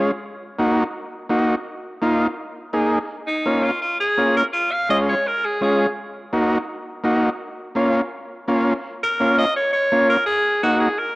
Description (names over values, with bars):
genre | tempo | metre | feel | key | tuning
latin | 167 BPM | 4/4 | straight | Bb minor | A4 = 439 Hz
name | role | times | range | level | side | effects
overdriven combo organ | accompaniment | 0.0-10.9 s | Ab3 to Ab4 | -20 LUFS | equal | cassette tape
raspy alto saxophone | melody | 3.3-5.9, 9.0-11.2 s | Eb4 to F5 | -19 LUFS | equal | none
room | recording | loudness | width
wet spring reverb, RT60 2.3 s | home recording on cassette | -18 LUFS | side -23 dB against mid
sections
0.0-8.8 A section; 8.8-11.2 B section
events
none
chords
0.2 Ebm; 3.1 Bbm; 4.5 Db; 6.0 Ebm; 7.4 Bbm; 10.3 Ebm